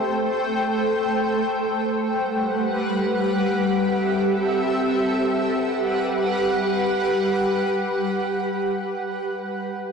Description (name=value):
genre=hip hop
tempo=free time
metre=none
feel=none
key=G major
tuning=A4 = 438 Hz
part: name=granular cloud pad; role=sustained chords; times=0.0-9.2 s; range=G3 to G5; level=-20 LUFS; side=equal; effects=built-in reverb
room=moderate lush hall reverb, RT60 2.3 s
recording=blown-out, overdriven recording, overdrive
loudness=-20 LUFS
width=side -6 dB against mid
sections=0.0-5.2 A section; 5.2-8.4 B section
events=none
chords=0.0 Am7; 2.0 Gmaj7; 3.6 C6; 5.2 Gmaj7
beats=free time